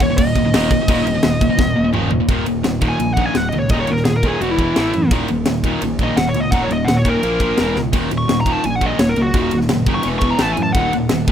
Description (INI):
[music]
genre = heavy metal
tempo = 170 BPM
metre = 4/4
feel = straight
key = Eb phrygian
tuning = A4 = 439 Hz
[part]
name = high-gain lead guitar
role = melody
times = 0.0-10.9 s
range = E4 to Db6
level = -21 LUFS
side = equal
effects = distortion
[part]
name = distorted electric guitar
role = riff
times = 0.0-11.3 s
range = Eb2 to Bb3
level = -18 LUFS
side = equal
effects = overdrive
[part]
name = fuzz picked electric bass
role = bass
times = 0.0-11.3 s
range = Eb1 to Gb2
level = -23 LUFS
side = equal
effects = overdrive
[part]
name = tight metal drum kit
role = drums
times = 0.0-11.3 s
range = crash cymbal, kick drum, ride cymbal, snare drum, toms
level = -20 LUFS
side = equal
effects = none
[sound]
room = light reverb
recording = rough home demo mix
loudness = -14 LUFS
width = side -9 dB against mid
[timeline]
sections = 0.0-2.3 A section; 2.3-11.3 B section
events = drum fill 1.6-2.3, 7.8; lead electric guitar solo 2.3-11.3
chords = 0.0 Eb5; 4.4 E5; 4.8 A5; 5.1 Eb5; 7.2 Bb5; 7.6 E5; 7.9 Ebm; 10.0 E5; 10.4 A5; 10.8 Eb5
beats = 0.18 0.53 | 0.88 1.23 1.58 1.94 | 2.29 2.64 2.99 3.35 | 3.70 4.05 4.41 4.76 | 5.11 5.46 5.82 6.17 | 6.52 6.88 7.23 7.58 | 7.93 8.28 8.64 8.99 | 9.34 9.69 10.05 10.40 | 10.75 11.10